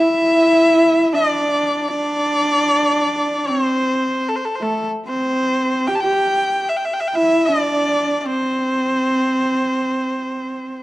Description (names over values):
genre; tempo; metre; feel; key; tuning
chinese traditional, Chinese chamber ensemble; 77 BPM; 4/4; straight; unclear; A4 = 439 Hz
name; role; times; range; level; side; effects
clear erhu; melody; 0.0-10.8 s; A4 to A5; -18 LUFS; left 1 dB; none
rich horsehead fiddle; second line; 0.0-10.8 s; A3 to G4; -19 LUFS; right 1 dB; none
room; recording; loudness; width
moderate recital hall reverb, RT60 1.6 s; dark, warm production; -16 LUFS; side -16 dB against mid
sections
0.0-10.8 A section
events
none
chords
none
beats
0.36 1.13 | 1.91 2.69 3.48 4.28 | 5.08 5.88 6.67 7.46 | 8.25 9.03 9.80 10.57